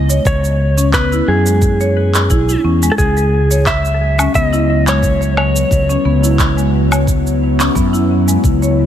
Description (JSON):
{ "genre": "organic downtempo", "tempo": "88 BPM", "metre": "4/4", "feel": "swing 54% on 16ths", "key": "C# minor", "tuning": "A4 = 440 Hz", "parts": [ { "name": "clean lap steel guitar", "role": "melody", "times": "0.0-6.7 s", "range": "G#4 to E5", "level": "-18 LUFS", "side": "equal", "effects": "ping-pong delay" }, { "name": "marimba with medium hard mallets", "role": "arpeggios", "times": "0.0-8.7 s", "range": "G#3 to C#5", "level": "-18 LUFS", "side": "left 1 dB", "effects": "tape echo" }, { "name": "fretless electric bass", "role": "bass", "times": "0.0-8.9 s", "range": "B1 to F#2", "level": "-15 LUFS", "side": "equal", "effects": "sidechain pumping" }, { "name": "electronic shaker, handclaps and woodblock", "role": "drums", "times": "0.1-8.8 s", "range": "none", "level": "-20 LUFS", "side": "equal", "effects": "none" }, { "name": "electronic kick drum", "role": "drums", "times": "0.3-8.6 s", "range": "none", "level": "-17 LUFS", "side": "equal", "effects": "none" }, { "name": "bowed-like drone", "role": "sustained chords", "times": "4.0-8.9 s", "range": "F#3 to E4", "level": "-20 LUFS", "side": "equal", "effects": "built-in reverb, sidechain pumping" } ], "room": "little or no reverb", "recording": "none", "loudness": "-11 LUFS", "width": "side -10 dB against mid", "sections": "0.0-8.9 A section", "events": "none", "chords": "0.0 C#m" }